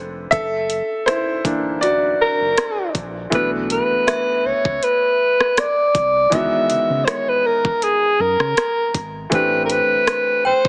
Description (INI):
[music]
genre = contemporary R&B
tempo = 80 BPM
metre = 4/4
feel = swing 54% on 16ths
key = unclear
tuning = A4 = 440 Hz
[part]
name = clear baby grand piano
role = accompaniment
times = 0.0-10.7 s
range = D#3 to E5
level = -24 LUFS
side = equal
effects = none
[part]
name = sub bass with octave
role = bass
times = 0.0-10.7 s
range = D1 to C#3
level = -34 LUFS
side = equal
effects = none
[part]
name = smooth R&B drum kit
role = drums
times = 0.3-10.7 s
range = hi-hat, kick drum, rim click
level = -24 LUFS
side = equal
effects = none
[part]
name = breathy alto saxophone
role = melody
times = 2.2-10.7 s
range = G#4 to E5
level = -19 LUFS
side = equal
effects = none
[part]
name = synth chime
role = texture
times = 4.1-5.6, 10.4-10.7 s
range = E5 to G5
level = -29 LUFS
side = equal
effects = ensemble chorus, digital delay
[sound]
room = light reverb, digital ambience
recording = heavily compressed radio sound, multiband compression, small speaker sound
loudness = -19 LUFS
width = mono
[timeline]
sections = 0.0-3.3 A section; 3.3-10.7 B section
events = grand piano solo 0.0-3.3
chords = 0.3 F#7alt; 3.3 Bm11; 6.3 C#m11; 9.3 Am11